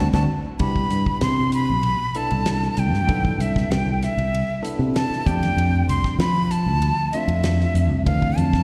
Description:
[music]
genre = electric jazz fusion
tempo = 96 BPM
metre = 4/4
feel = straight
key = C major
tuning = A4 = 440 Hz
[part]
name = breathy bright jazz flute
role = melody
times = 0.0-8.6 s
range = E5 to C6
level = -28 LUFS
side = equal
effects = slapback echo, tape echo
[part]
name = bell-like tine electric piano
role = accompaniment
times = 0.0-8.6 s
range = E3 to A4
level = -31 LUFS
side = equal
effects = slapback echo
[part]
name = clear studio string section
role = sustained chords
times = 0.0-0.6 s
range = D3 to B4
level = -44 LUFS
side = equal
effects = none
[part]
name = fingered electric bass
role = bass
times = 0.0-8.6 s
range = B1 to F3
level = -23 LUFS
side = equal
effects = none
[part]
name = damped 70s drum kit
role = drums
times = 0.1-8.6 s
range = hi-hat, kick drum, ride cymbal, snare drum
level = -28 LUFS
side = equal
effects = none
[sound]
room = light reverb, small room ambience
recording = live gig heard through the venue's PA, recital hall reverb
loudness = -21 LUFS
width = mono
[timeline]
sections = 0.6-8.6 A section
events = drum fill 0.0-0.6; band accent 0.0-0.6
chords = 0.0 D13; 0.6 Cmaj7; 5.3 F69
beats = | 0.60 1.22 1.84 2.46 | 3.09 3.71 4.33 4.96 | 5.58 6.20 6.82 7.45 | 8.07

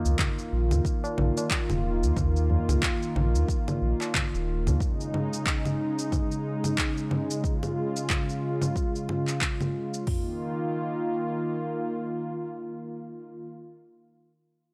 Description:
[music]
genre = organic downtempo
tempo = 91 BPM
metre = 4/4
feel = swing 57% on 16ths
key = unclear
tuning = A4 = 440 Hz
[part]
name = warm analog pad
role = sustained chords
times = 0.0-13.5 s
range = Db3 to F4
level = -32 LUFS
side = equal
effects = chorus, sidechain pumping
[part]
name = kora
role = arpeggios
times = 0.0-1.3 s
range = Bb3 to F4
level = -45 LUFS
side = equal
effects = analog delay
[part]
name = warm sub bass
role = bass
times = 0.1-4.8 s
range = Eb1 to Eb2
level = -27 LUFS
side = equal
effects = sidechain pumping
[part]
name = electronic shaker, handclaps and congas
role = drums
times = 0.1-10.1 s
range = none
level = -32 LUFS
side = equal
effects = overdrive, studio reverb
[part]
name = deep house drum kit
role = drums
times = 0.2-10.2 s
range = hi-hat, kick drum, toms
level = -32 LUFS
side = equal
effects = overdrive, studio reverb
[part]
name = tabla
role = percussion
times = 1.0-4.8 s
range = none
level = -37 LUFS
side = equal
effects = none
[sound]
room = little or no reverb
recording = dry, gritty hardware recording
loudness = -28 LUFS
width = mono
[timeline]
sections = 0.0-10.1 A section; 10.1-12.7 B section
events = none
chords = 0.0 Ebsus2; 4.8 Db; 10.1 Ebsus2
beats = 0.18 0.84 1.50 | 2.16 2.82 3.48 4.14 | 4.80 5.46 6.12 6.78 | 7.44 8.10 8.76 9.42 | 10.08 10.73 11.39 12.05

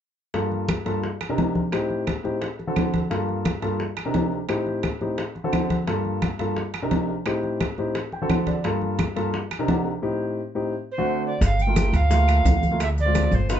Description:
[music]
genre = Afro-Cuban jazz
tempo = 173 BPM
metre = 4/4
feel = straight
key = G minor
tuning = A4 = 440 Hz
[part]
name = warm concert grand piano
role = accompaniment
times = 0.3-13.6 s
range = G2 to G5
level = -26 LUFS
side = left 1 dB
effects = none
[part]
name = bongos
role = percussion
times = 0.3-13.6 s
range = none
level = -33 LUFS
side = left 2 dB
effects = none
[part]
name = congas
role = percussion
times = 0.3-13.6 s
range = none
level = -27 LUFS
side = left 1 dB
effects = none
[part]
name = timbales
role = percussion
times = 0.3-13.6 s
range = none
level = -33 LUFS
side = right 6 dB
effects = none
[part]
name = claves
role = percussion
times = 0.7-9.7, 11.8-13.3 s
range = none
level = -37 LUFS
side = right 7 dB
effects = none
[part]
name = alto recorder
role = melody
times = 10.9-13.6 s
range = B4 to G5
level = -25 LUFS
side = right 3 dB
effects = none
[part]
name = upright bass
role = bass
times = 11.4-13.6 s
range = G1 to D2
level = -20 LUFS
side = equal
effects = none
[part]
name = maracas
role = percussion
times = 11.4-13.6 s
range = none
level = -41 LUFS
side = left 4 dB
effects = none
[sound]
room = moderate studio ambience, RT60 0.4 s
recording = heard from further back in the room, nothing above 7.9 kHz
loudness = -21 LUFS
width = side -9 dB against mid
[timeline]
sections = 0.3-11.4 A section; 11.4-13.6 B section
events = grand piano fill 8.0-8.6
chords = 0.3 Gm7; 1.0 Cm7; 1.7 Am7b5; 2.4 D7; 3.1 Gm7; 3.8 Cm7; 4.5 Am7b5; 5.2 D7; 5.9 Gm7; 6.6 Cm7; 7.3 Am7b5; 8.0 D7; 8.6 Gm7; 9.3 Cm7; 10.0 Am7b5; 10.7 D7; 11.4 Gm9; 12.8 Dm7b5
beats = | 0.34 0.69 1.03 1.38 | 1.72 2.07 2.42 2.76 | 3.11 3.45 3.80 4.14 | 4.49 4.84 5.18 5.53 | 5.88 6.22 6.57 6.91 | 7.26 7.61 7.95 8.30 | 8.65 8.99 9.34 9.69 | 10.03 10.38 10.72 11.07 | 11.42 11.76 12.11 12.46 | 12.80 13.15 13.49

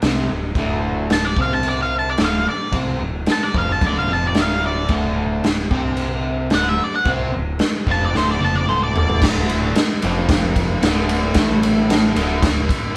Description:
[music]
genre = garage rock duo or trio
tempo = 111 BPM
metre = 4/4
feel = straight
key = unclear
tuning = A4 = 436 Hz
[part]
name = crunchy overdriven guitar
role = riff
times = 0.0-13.0 s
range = D2 to C4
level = -25 LUFS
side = equal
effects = none
[part]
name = growling picked electric bass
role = bass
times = 0.0-12.7 s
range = D1 to C2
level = -27 LUFS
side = equal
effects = overdrive
[part]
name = raw garage drum kit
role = drums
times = 0.0-12.8 s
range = crash cymbal, kick drum, ride cymbal, snare drum, toms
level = -22 LUFS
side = equal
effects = none
[part]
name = octave-fuzz lead guitar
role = melody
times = 1.1-9.2 s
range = C5 to A5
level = -23 LUFS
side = equal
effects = distortion
[sound]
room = light reverb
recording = band playing live in one room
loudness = -19 LUFS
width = mono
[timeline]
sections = 0.0-9.2 A section; 9.2-13.0 B section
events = drum fill 8.2-9.2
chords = 0.0 Dm7; 9.2 D5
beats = 0.02 | 0.56 1.11 1.65 2.20 | 2.74 3.29 3.83 4.37 | 4.92 5.46 6.00 6.54 | 7.08 7.62 8.16 8.70 | 9.23 9.77 10.30 10.84 | 11.37 11.90 12.44

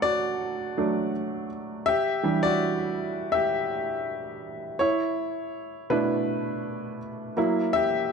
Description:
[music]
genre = soul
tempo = 82 BPM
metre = 4/4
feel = swing 58% on 16ths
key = E dorian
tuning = A4 = 440 Hz
[part]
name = clear grand piano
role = solo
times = 0.0-8.1 s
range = B2 to F#5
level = -24 LUFS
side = equal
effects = slapback echo
[sound]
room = light reverb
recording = none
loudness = -24 LUFS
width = side -5 dB against mid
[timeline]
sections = 0.0-8.1 A section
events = grand piano solo 0.0-8.1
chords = 0.0 D/F#; 1.9 Em9; 4.8 B9sus4; 7.4 F#7b9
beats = 0.40 1.14 | 1.87 2.60 3.33 4.07 | 4.80 5.54 6.27 7.00 | 7.74

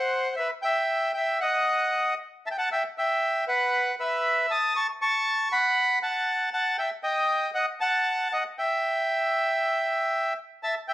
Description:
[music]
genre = tango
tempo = 117 BPM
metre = 4/4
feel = rubato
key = unclear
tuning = A4 = 440 Hz
[part]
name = bandoneon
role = solo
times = 0.0-10.9 s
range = B4 to D#6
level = -23 LUFS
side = equal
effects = none
[sound]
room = moderate large studio reverb, RT60 1.1 s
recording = band playing live in one room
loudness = -23 LUFS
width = side -15 dB against mid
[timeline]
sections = 0.0-10.9 A section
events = none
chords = 0.4 Em/B; 1.4 N.C.; 2.4 Em; 4.5 F#m; 6.5 D#dim; 8.6 N.C.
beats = | 0.38 0.89 1.40 1.92 | 2.43 2.95 3.46 3.98 | 4.49 5.00 5.51 6.02 | 6.53 7.03 7.54 8.05 | 8.56 9.08 9.59 10.11 | 10.62

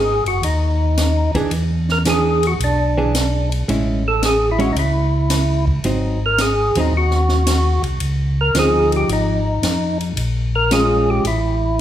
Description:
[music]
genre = soul jazz organ trio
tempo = 111 BPM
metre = 4/4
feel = swing 69% on 8ths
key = G# minor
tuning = A4 = 440 Hz
[part]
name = percussive tonewheel organ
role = melody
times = 0.0-11.8 s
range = D4 to A#4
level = -19 LUFS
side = equal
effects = slow rotary speaker, overdrive
[part]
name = mellow tonewheel organ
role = bass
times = 0.0-11.8 s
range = F#1 to E#2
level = -19 LUFS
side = equal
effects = overdrive, chorus vibrato, slow rotary speaker
[part]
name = compact cocktail drum kit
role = drums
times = 0.3-11.4 s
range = hi-hat, kick drum, ride cymbal, snare drum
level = -25 LUFS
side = equal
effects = none
[part]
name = hollow-body jazz guitar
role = accompaniment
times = 1.3-11.3 s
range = E3 to G#4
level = -22 LUFS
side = right 2 dB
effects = none
[sound]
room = moderate large studio reverb, RT60 1.3 s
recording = band playing live in one room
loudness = -15 LUFS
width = side -11 dB against mid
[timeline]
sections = 0.0-11.8 A section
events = none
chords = 0.0 G#7(no3); 1.5 E7; 3.7 Amaj7; 5.8 G#7; 8.0 C#maj9; 10.2 A#m7; 11.2 A5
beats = 0.44 0.98 | 1.52 2.06 2.60 3.14 | 3.68 4.22 4.76 5.30 | 5.85 6.39 6.93 7.47 | 8.01 8.55 9.09 9.63 | 10.17 10.71 11.25 11.79

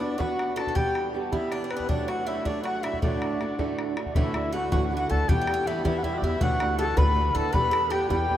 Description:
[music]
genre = celtic folk, Celtic jig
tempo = 106 BPM (dotted quarters)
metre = 6/8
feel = straight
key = D major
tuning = A4 = 439 Hz
[part]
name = bright reedy baroque flute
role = melody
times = 0.0-8.4 s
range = B4 to B5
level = -29 LUFS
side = left 1 dB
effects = none
[part]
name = Irish bouzouki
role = second line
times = 0.0-8.4 s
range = D4 to B4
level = -35 LUFS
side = right 2 dB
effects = none
[part]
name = mellow duduk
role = second line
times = 0.0-8.4 s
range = B3 to B4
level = -33 LUFS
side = left 3 dB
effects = none
[part]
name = fingerpicked swing-style acoustic guitar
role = accompaniment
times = 0.0-8.4 s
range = D2 to B4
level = -30 LUFS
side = right 3 dB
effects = none
[part]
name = bodhran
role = percussion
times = 0.2-8.3 s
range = none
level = -30 LUFS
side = left 1 dB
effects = none
[part]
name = upright bass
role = bass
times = 4.2-8.4 s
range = D2 to E2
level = -28 LUFS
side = equal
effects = none
[sound]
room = wet cathedral reverb, RT60 6.0 s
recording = in a vast, echoing space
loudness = -23 LUFS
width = side -11 dB against mid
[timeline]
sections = 0.0-4.2 A section; 4.2-8.4 B section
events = none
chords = 0.0 Bm; 0.8 Em; 1.9 D/F#; 3.0 D; 4.2 Dadd9; 5.3 Em; 6.4 Dadd9; 7.5 Em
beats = 0.20 | 0.76 1.33 | 1.89 2.46 | 3.02 3.59 | 4.16 4.72 | 5.28 5.85 | 6.41 6.97 | 7.54 8.10

